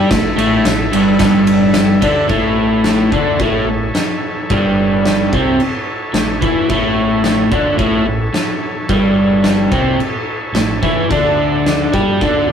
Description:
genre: garage rock duo or trio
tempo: 109 BPM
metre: 4/4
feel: straight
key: A mixolydian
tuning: A4 = 440 Hz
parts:
  - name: combo organ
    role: sustained chords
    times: 0.0-12.5 s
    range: D4 to E5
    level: -24 LUFS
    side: left 1 dB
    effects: none
  - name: crunchy overdriven guitar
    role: riff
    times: 0.0-12.5 s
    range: G2 to G4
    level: -14 LUFS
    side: equal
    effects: none
  - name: growling fingered electric bass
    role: bass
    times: 0.0-12.5 s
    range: G1 to G2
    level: -23 LUFS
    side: right 1 dB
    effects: overdrive
  - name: oversized low-tuned drum kit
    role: drums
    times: 0.1-12.3 s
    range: crash cymbal, kick drum, ride cymbal, snare drum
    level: -18 LUFS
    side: equal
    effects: none
room: wet small room reverb, RT60 0.5 s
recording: rough rehearsal-room recording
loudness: -12 LUFS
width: side -8 dB against mid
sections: 0.0-2.3 A section; 2.3-12.5 B section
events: none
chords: 0.0 A5; 2.3 A; 11.1 D5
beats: | 0.10 0.64 1.19 1.74 | 2.29 2.84 3.39 3.94 | 4.49 5.04 5.59 6.14 | 6.69 7.24 7.79 8.34 | 8.89 9.45 9.99 10.55 | 11.10 11.65 12.20

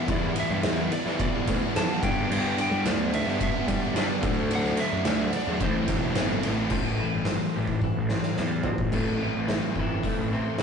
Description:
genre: quiet-loud alternative rock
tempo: 109 BPM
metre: 4/4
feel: straight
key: A minor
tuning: A4 = 440 Hz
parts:
  - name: lightly driven lead guitar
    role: melody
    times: 0.0-6.4 s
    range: C5 to A5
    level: -33 LUFS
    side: right 2 dB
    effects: none
  - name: crunchy overdriven guitar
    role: riff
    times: 0.0-10.6 s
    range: G2 to E4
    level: -31 LUFS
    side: left 5 dB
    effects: none
  - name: fuzz guitar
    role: riff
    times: 0.0-10.6 s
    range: G2 to E4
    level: -35 LUFS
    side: right 4 dB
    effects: distortion
  - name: thick fuzz guitar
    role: riff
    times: 0.0-6.7 s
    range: G2 to E4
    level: -33 LUFS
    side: equal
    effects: distortion
  - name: fuzz picked electric bass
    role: bass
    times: 0.1-10.6 s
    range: E1 to G3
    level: -30 LUFS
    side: equal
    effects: overdrive
  - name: oversized low-tuned drum kit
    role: drums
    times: 0.1-10.6 s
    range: crash cymbal, hi-hat, kick drum, ride cymbal, snare drum, toms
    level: -28 LUFS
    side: right 1 dB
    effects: none
  - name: twelve-string electric guitar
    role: arpeggios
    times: 6.7-10.6 s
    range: A2 to E4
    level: -35 LUFS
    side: equal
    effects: none
room: moderate small room reverb, RT60 0.5 s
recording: rough rehearsal-room recording, warm saturation, nothing above 10.9 kHz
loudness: -23 LUFS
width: side -6 dB against mid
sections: 0.0-6.7 A section; 6.7-8.9 B section; 8.9-10.6 C section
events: drum fill 7.8-8.9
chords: 0.0 Em7; 2.0 G; 4.2 D; 5.6 Am7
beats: | 0.10 0.65 1.20 1.75 | 2.31 2.86 3.41 3.96 | 4.51 5.06 5.62 6.17 | 6.72 7.27 7.82 8.38 | 8.93 9.48 10.04 10.59

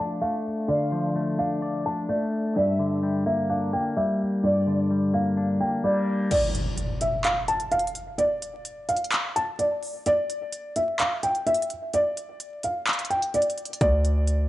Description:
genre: hip hop, trap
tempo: 128 BPM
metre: 4/4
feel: half-time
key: unclear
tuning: A4 = 440 Hz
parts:
  - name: felt-muted upright piano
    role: melody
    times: 0.0-14.5 s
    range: D5 to A5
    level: -26 LUFS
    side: equal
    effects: low-pass filter, analog delay
  - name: semi-hollow electric guitar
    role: accompaniment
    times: 0.0-6.3 s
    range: G2 to D5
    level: -24 LUFS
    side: left 1 dB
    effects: spring reverb, low-pass filter
  - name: warm studio violin section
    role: second line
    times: 0.7-4.9 s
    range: D5 to F5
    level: -35 LUFS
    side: equal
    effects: analog delay
  - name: trap drum kit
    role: drums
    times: 6.3-14.4 s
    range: crash cymbal, handclaps, hi-hat, kick drum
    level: -28 LUFS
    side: equal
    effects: none
  - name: impact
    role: sound effects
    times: 6.3-8.2 s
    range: none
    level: -31 LUFS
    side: equal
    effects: none
  - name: hard-hitting 808-style bass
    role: bass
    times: 13.8-14.5 s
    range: D2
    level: -21 LUFS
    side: equal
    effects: none
room: digital ambience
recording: dry, gritty hardware recording, vinyl crackle, low-pass filter, nothing above 11.0 kHz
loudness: -23 LUFS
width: side -15 dB against mid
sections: 0.0-6.3 A section; 6.3-14.5 B section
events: filter sweep 0.0-6.3; kick muted 6.3-13.8; impact 6.3-8.2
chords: 0.0 Dm; 2.6 Gm; 6.3 N.C.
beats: 0.22 | 0.69 1.15 1.62 2.09 | 2.56 3.03 3.50 3.97 | 4.43 4.90 5.37 5.84 | 6.31 6.78 7.25 7.72 | 8.19 8.65 9.12 9.59 | 10.06 10.53 11.00 11.47 | 11.94 12.40 12.87 13.34 | 13.81 14.28

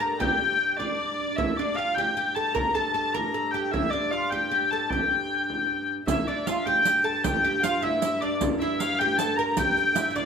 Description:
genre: medieval dance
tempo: 102 BPM (dotted quarters)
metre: 6/8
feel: straight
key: G dorian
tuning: A4 = 440 Hz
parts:
  - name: rich hurdy-gurdy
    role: melody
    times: 0.0-10.3 s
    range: D5 to Bb5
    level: -25 LUFS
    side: left 3 dB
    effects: none
  - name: clear shawm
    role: second line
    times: 0.0-10.3 s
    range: D5 to Bb5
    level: -32 LUFS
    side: equal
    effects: none
  - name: oud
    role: second line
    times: 0.0-10.3 s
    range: D4 to Bb4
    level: -30 LUFS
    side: right 4 dB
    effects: none
  - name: dark viola da gamba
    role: drone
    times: 0.0-10.3 s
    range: G2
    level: -34 LUFS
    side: left 1 dB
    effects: none
  - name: frame drum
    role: percussion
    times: 0.0-10.3 s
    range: none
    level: -32 LUFS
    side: right 2 dB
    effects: none
  - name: riq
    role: percussion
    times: 6.1-10.3 s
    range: none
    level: -33 LUFS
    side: right 5 dB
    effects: none
room: moderate stone room reverb, RT60 1.1 s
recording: band playing live in one room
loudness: -23 LUFS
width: side -6 dB against mid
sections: 0.0-6.1 A section; 6.1-10.3 A section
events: none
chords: none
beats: | 0.21 0.80 | 1.39 1.97 | 2.56 3.15 | 3.73 4.32 | 4.91 5.49 | 6.08 6.66 | 7.25 7.83 | 8.41 9.00 | 9.58 10.16

